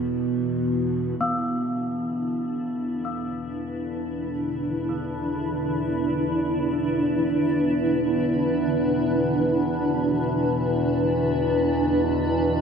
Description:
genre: dark ambient drone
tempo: free time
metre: none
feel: none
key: unclear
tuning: A4 = 438 Hz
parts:
  - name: granular cloud pad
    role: sustained chords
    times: 0.0-12.6 s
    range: D4 to B4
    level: -24 LUFS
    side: right 1 dB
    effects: built-in reverb
  - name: overtone-sweeping drone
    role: drone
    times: 0.0-12.6 s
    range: E2 to B2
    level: -27 LUFS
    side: equal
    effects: chorus, built-in reverb
  - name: gamelan-type bronze metallophone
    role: arpeggios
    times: 1.2-8.6 s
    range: B3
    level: -29 LUFS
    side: left 1 dB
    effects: ping-pong delay
  - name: quartz singing bowl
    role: texture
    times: 1.2-12.6 s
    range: E3 to E4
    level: -41 LUFS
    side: left 1 dB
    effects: none
room: wet cathedral reverb, RT60 5.4 s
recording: in a vast, echoing space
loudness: -22 LUFS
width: side -6 dB against mid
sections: 0.0-1.2 A section; 1.2-12.6 B section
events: fade-in on synth drone 1.2-12.6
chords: 0.0 E5

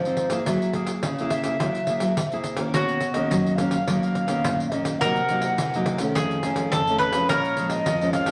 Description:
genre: samba and choro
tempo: 106 BPM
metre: 4/4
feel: straight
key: unclear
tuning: A4 = 440 Hz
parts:
  - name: breathy alto ocarina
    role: melody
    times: 0.0-8.3 s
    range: C5 to Gb5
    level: -30 LUFS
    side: equal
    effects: none
  - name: nylon-string guitar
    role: accompaniment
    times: 0.0-8.3 s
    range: F2 to Ab4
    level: -29 LUFS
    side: equal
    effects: none
  - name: nylon-string guitar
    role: bass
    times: 0.0-8.3 s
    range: A#2 to Gb3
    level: -32 LUFS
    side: equal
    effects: none
  - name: pandeiro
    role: percussion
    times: 0.1-8.3 s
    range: none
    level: -31 LUFS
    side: equal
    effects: none
  - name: bowl-back mandolin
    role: second line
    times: 2.7-8.3 s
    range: F#4 to Cb5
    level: -28 LUFS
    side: equal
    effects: none
room: wet studio reverb, RT60 0.7 s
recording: none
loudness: -24 LUFS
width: mono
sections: 0.0-8.3 A section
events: none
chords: 0.5 Gb9; 2.7 Bmaj9; 5.0 Cm7b5; 6.2 F7alt; 7.3 Bbm7

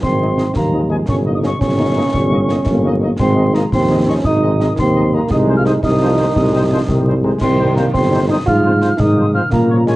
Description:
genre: military-style march for wind band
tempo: 114 BPM (dotted quarters)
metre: 6/8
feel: straight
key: Ab major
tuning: A4 = 440 Hz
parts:
  - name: mellow wooden piccolo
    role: second line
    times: 0.0-9.9 s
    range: Ab5 to F6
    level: -24 LUFS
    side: left 2 dB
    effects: tape echo
  - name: warm euphonium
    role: second line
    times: 0.0-10.0 s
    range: Ab3 to F4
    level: -19 LUFS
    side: right 3 dB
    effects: none
  - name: dark trombone section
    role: sustained chords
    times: 0.0-10.0 s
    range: C3 to Bb3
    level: -24 LUFS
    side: left 1 dB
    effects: none
  - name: warm tuba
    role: bass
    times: 0.0-10.0 s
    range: G1 to Bb2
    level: -16 LUFS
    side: equal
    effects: none
  - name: concert snare drum, concert bass drum and clash cymbals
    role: drums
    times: 0.0-10.0 s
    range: none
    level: -20 LUFS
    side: equal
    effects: vintage 12-bit sampler grit
  - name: warm trumpet section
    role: melody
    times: 0.2-9.9 s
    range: C5 to Eb5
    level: -31 LUFS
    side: left 2 dB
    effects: tape echo
  - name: warm French horn section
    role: accompaniment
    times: 0.2-9.9 s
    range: F3 to F4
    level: -25 LUFS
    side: left 2 dB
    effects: none
room: light reverb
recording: vinyl crackle, lossy compression artefacts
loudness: -12 LUFS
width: side -17 dB against mid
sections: 0.0-10.0 A section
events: none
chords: 0.0 Ab; 1.1 Eb7/G; 3.2 Ab; 5.3 Ab/C; 7.4 Cm; 8.5 Fm/Ab

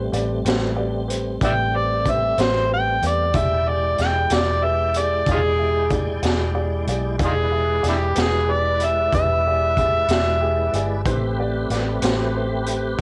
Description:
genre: slow blues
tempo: 62 BPM (dotted quarters)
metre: 12/8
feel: straight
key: A minor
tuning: A4 = 441 Hz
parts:
  - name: warm concert grand piano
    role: accompaniment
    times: 0.0-12.9 s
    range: G4 to G#5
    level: -30 LUFS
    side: equal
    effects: plate reverb
  - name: tonewheel organ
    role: sustained chords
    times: 0.0-13.0 s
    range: G3 to G5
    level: -32 LUFS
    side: equal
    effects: slow rotary speaker, overdrive, chorus vibrato, plate reverb
  - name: vintage muted fingered electric bass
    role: bass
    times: 0.0-13.0 s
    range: E1 to E2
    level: -27 LUFS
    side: equal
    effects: none
  - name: raw garage drum kit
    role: drums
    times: 0.1-13.0 s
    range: hi-hat, kick drum, snare drum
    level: -28 LUFS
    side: equal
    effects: cassette tape
  - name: overdriven harmonica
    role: melody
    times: 1.4-11.0 s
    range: D4 to G5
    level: -23 LUFS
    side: equal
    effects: cassette tape, plate reverb
room: light reverb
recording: home recording on cassette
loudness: -21 LUFS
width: mono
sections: 0.0-13.0 A section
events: grand piano fill 10.1-11.1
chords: 0.0 Am9; 3.3 E7#9; 11.1 Am9

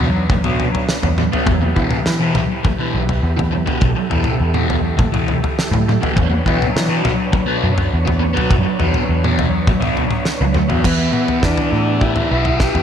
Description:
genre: psychedelic rock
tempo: 102 BPM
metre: 4/4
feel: straight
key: E dorian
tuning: A4 = 440 Hz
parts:
  - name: tonewheel organ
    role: sustained chords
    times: 0.0-12.8 s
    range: C#4 to E5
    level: -27 LUFS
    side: right 2 dB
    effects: slow rotary speaker, chorus vibrato
  - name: thick fuzz guitar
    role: riff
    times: 0.0-12.8 s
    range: E2 to B4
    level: -18 LUFS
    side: equal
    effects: distortion, phaser, dub echo
  - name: vintage muted picked electric bass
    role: bass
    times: 0.0-12.8 s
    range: B1 to E3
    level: -19 LUFS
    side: equal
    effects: none
  - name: damped 70s drum kit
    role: drums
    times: 0.3-12.8 s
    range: crash cymbal, kick drum, snare drum, toms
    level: -20 LUFS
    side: equal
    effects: none
  - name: overdriven combo organ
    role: melody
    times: 10.9-12.8 s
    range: B3 to G4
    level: -20 LUFS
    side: equal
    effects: dub echo
room: moderate echo chamber reverb, RT60 1.5 s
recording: echo-heavy mix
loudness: -14 LUFS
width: side -8 dB against mid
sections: 0.0-10.8 A section; 10.8-12.8 B section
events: drum fill 10.3-10.8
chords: 0.0 Bmadd9/E; 1.5 Em; 6.2 Bmadd9/E; 10.8 Em

